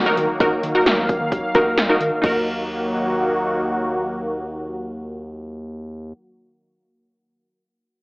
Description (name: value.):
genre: synth-pop.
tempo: 131 BPM.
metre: 4/4.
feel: straight.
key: Eb minor.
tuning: A4 = 440 Hz.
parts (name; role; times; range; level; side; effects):
lush unison pad; sustained chords; 0.0-6.1 s; Eb3 to F5; -22 LUFS; equal; chorus, low-pass filter.
round analog bass; bass; 0.0-6.1 s; Eb2 to Eb3; -32 LUFS; equal; none.
wide unison pluck; accompaniment; 0.1-6.2 s; Eb4 to Bb4; -19 LUFS; equal; low-pass filter.
80s electronic pad drums; drums; 0.2-2.3 s; crash cymbal, hi-hat, kick drum, snare drum; -22 LUFS; equal; none.
room: wet plate reverb, RT60 1.1 s.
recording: worn, warbling old tape, cassette tape, warbly pitch drift, AM radio sound.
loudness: -18 LUFS.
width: side -31 dB against mid.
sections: 0.0-2.2 A section; 2.2-5.9 B section.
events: none.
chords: 0.0 Ebm.